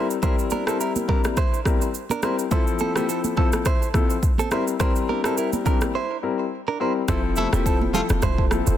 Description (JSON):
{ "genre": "afrobeats", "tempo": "105 BPM", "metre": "4/4", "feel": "swing 55% on 16ths", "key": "F major", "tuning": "A4 = 438 Hz", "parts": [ { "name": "warm grand piano", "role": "accompaniment", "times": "0.0-8.7 s", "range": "F3 to Bb4", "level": "-25 LUFS", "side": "left 6 dB", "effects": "none" }, { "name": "direct-recorded clean electric guitar", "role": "riff", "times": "0.0-8.5 s", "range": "Bb3 to C5", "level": "-28 LUFS", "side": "right 6 dB", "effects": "digital delay" }, { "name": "afro-pop drum kit", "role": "drums", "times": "0.1-8.8 s", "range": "kick drum, rim click, shaker", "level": "-23 LUFS", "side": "equal", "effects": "soft clipping on snare" }, { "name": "congas", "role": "percussion", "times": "0.2-8.7 s", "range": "none", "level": "-32 LUFS", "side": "right 6 dB", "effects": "none" }, { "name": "deep dark ambient pad", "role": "sustained chords", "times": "7.9-8.8 s", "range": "F3 to A4", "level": "-32 LUFS", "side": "right 3 dB", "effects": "chorus, built-in reverb" }, { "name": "short 808-style bass", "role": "bass", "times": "7.1-8.8 s", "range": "E1 to F1", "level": "-24 LUFS", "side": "equal", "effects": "none" }, { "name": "clear horn section", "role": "second line", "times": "7.4-8.0 s", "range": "C3 to F4", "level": "-29 LUFS", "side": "left 3 dB", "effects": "none" } ], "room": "light reverb", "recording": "dense, heavily limited modern master", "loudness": "-20 LUFS", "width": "side -11 dB against mid", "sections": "0.0-7.1 A section; 7.1-8.8 B section", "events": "break 5.9-7.1", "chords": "0.0 C7; 2.5 Fmaj7; 4.5 C7; 7.1 Fmaj7" }